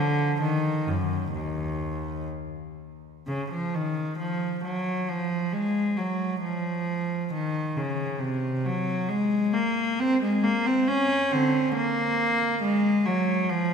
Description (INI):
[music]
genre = classical, baroque-style suite movement for unaccompanied cello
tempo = 60-70 BPM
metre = 3/4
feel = rubato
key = Eb minor, Bb minor from 3.3 s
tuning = A4 = 437 Hz
[part]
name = rich cello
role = solo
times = 0.0-13.7 s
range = Eb2 to Db4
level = -24 LUFS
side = equal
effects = none
[sound]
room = wet church reverb, RT60 3.5 s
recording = minimal, uncompressed stereo recording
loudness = -24 LUFS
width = side -6 dB against mid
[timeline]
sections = 0.0-3.3 A section; 3.3-13.7 A section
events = none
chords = none